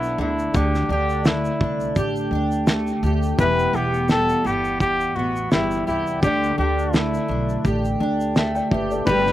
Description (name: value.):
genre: acoustic pop.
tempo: 84 BPM.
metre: 4/4.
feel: swing 55% on 16ths.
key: unclear.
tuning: A4 = 440 Hz.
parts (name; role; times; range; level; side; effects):
warm trumpet; melody; 0.0-9.3 s; E4 to B4; -22 LUFS; left 1 dB; none.
fingerpicked steel-string acoustic guitar; accompaniment; 0.0-9.3 s; E2 to A4; -24 LUFS; equal; double-tracked left and right.
upright bass; bass; 0.0-9.3 s; E1 to D2; -26 LUFS; equal; none.
cloth-damped thuddy drum kit; drums; 0.0-9.3 s; kick drum, shaker, snare drum; -20 LUFS; equal; none.
felt-muted upright piano; accompaniment; 3.4-9.3 s; G3 to A5; -30 LUFS; left 2 dB; none.
room: little or no reverb.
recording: recorded outdoors, with no room sound.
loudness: -19 LUFS.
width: side -13 dB against mid.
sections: 0.0-9.3 A section.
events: none.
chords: 0.2 Dsus4; 3.4 Em; 6.2 Dsus4.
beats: | 0.55 1.26 1.97 2.68 | 3.39 4.10 4.81 5.52 | 6.23 6.94 7.65 8.36 | 9.07.